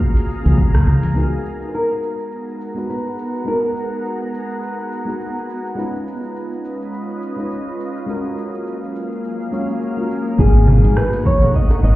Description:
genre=sunset chillout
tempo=104 BPM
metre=4/4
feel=swing 57% on 16ths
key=G# dorian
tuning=A4 = 438 Hz
part: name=flamenco guitar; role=melody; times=0.0-5.5, 10.4-12.0 s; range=G#4 to D#5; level=-23 LUFS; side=equal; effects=ping-pong delay, shimmer reverb
part: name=mellow FM electric piano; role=accompaniment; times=0.0-12.0 s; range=G#3 to C#5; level=-25 LUFS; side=left 1 dB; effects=chorus, auto-pan, cassette tape, ping-pong delay, shimmer reverb
part: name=shimmering ambient pad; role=sustained chords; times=0.0-12.0 s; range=F#3 to A#5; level=-28 LUFS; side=equal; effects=chorus, built-in reverb, shimmer reverb
part: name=deep house drum kit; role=drums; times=0.0-12.0 s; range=cabasa, hi-hat, rim click, toms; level=-23 LUFS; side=equal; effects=none
part: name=electronic kick drum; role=drums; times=0.0-0.7, 10.4-11.7 s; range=none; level=-16 LUFS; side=equal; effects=none
part: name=modern bright fingered electric bass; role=bass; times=0.5-1.1, 10.4-12.0 s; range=F#1 to G#2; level=-13 LUFS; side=equal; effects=none
part: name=congas and bongos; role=percussion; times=0.5-1.1, 10.7-11.8 s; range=none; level=-23 LUFS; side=left 2 dB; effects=none
room=light reverb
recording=heard muffled through a wall, stone room reverb, EQ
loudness=-17 LUFS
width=side -16 dB against mid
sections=0.0-1.2 A section; 1.2-10.4 B section; 10.4-12.0 C section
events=none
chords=0.0 F#maj9; 1.2 G#m9; 5.8 C#9; 8.1 F#maj9; 10.4 G#m9

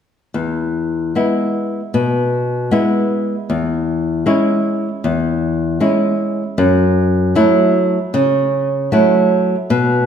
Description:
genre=fado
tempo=77 BPM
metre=4/4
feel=rubato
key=E major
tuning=A4 = 437 Hz
part: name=flamenco guitar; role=accompaniment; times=0.3-10.1 s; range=E2 to E4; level=-14 LUFS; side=equal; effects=none
room=wet recital hall reverb, RT60 1.6 s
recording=none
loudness=-14 LUFS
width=side -8 dB against mid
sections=0.3-10.1 A section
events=none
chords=0.3 E; 3.5 C#m/E; 6.6 F#m7

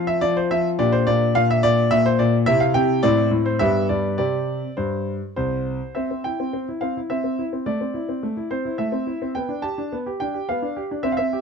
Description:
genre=classical-period piano sonatina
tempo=106 BPM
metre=3/4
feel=straight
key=C major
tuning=A4 = 440 Hz
part: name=clear grand piano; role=solo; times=0.0-11.4 s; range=C2 to A5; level=-19 LUFS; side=equal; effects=none
room=light reverb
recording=dark, warm production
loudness=-19 LUFS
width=side -6 dB against mid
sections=0.0-6.0 A section; 6.0-11.4 B section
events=none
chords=0.0 F5; 0.8 Gm/Bb; 2.5 C; 3.0 Am; 3.6 G; 4.2 C5; 6.0 C; 7.7 Am; 9.4 G/B

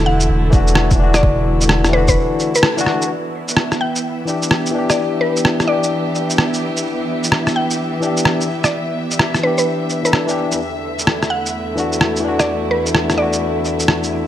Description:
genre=future garage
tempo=128 BPM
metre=4/4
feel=swing 64% on 16ths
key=E minor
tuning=A4 = 439 Hz
part: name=barky tine electric piano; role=accompaniment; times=0.0-14.3 s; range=E3 to A4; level=-21 LUFS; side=left 4 dB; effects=overdrive, sidechain pumping, tape echo
part: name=dark chamber string section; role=sustained chords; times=0.0-14.3 s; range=E2 to E5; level=-22 LUFS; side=right 1 dB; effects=sidechain pumping
part: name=warm sub bass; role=bass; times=0.0-2.2 s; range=E1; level=-17 LUFS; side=equal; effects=none
part: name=mallet-like synth pluck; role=melody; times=0.1-13.8 s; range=B4 to G5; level=-22 LUFS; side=equal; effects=chorus, dub echo
part: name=electronic shaker and rim click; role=drums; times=0.2-14.1 s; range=none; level=-17 LUFS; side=equal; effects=none
part: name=electronic kick drum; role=drums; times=0.5-2.1 s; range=none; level=-16 LUFS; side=equal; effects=overdrive
room=moderate lush hall reverb, RT60 2.0 s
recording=none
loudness=-14 LUFS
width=side -12 dB against mid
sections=0.0-3.1 A section; 3.1-14.3 B section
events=band accent 2.6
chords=0.0 D/E; 3.1 Em7; 10.6 D/E

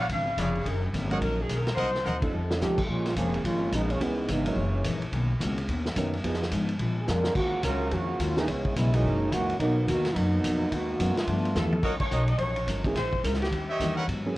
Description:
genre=jazz, big band swing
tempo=215 BPM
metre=4/4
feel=swing 61% on 8ths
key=F# major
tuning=A4 = 436 Hz
part: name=warm saxophone section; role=melody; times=0.0-2.6, 11.6-13.9 s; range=G4 to F#5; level=-31 LUFS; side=left 1 dB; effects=none
part: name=bright trumpet section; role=stabs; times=0.0-2.2, 11.8-14.0 s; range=F#4 to F#5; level=-34 LUFS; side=right 1 dB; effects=none
part: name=upright bass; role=bass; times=0.0-14.3 s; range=E#1 to A#2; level=-29 LUFS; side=equal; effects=none
part: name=picked steel-string acoustic guitar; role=accompaniment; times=0.1-14.3 s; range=F#2 to A#4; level=-34 LUFS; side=left 3 dB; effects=none
part: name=vintage drum kit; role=drums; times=0.1-14.2 s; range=crash cymbal, hi-hat, kick drum, ride cymbal, snare drum, toms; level=-33 LUFS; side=equal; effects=none
part: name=dark upright piano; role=accompaniment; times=1.1-14.4 s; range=D#3 to A#4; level=-33 LUFS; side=right 2 dB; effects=none
part: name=warm trombone section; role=second line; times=2.6-11.7 s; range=C#3 to A#4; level=-29 LUFS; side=right 1 dB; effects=none
room=light reverb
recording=worn, warbling old tape, cassette tape, warbly pitch drift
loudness=-25 LUFS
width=side -18 dB against mid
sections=0.0-2.9 A section; 2.9-11.8 B section; 11.8-14.4 A section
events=drum fill 2.1-2.6, 7.1, 11.6; band accent 2.2, 12.0; trombone section solo 2.9-11.8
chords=0.1 C#7b9; 0.7 F#6; 1.8 Cm7b5; 2.3 F7b13; 2.9 A#m7; 4.0 C#m9; 4.6 F#13; 5.1 Bmaj9; 6.2 Fm7b5; 6.8 A#7; 7.4 D#m11; 8.5 C#m7; 9.0 F#13; 9.6 Bmaj7; 10.7 G#m9; 11.3 G13; 11.8 F#6; 13.0 A#m7b5; 13.5 D#7b9

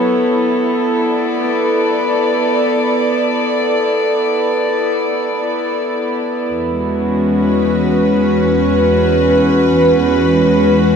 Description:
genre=ambient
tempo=free time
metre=none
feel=none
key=unclear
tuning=A4 = 440 Hz
part: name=dark studio string section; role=solo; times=0.0-11.0 s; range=E2 to D5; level=-12 LUFS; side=equal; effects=ping-pong delay
room=wet cathedral reverb, RT60 6.1 s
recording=in a vast, echoing space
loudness=-12 LUFS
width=side -6 dB against mid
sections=0.0-6.5 A section; 6.5-11.0 B section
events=none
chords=0.3 Bm; 6.5 Eadd9

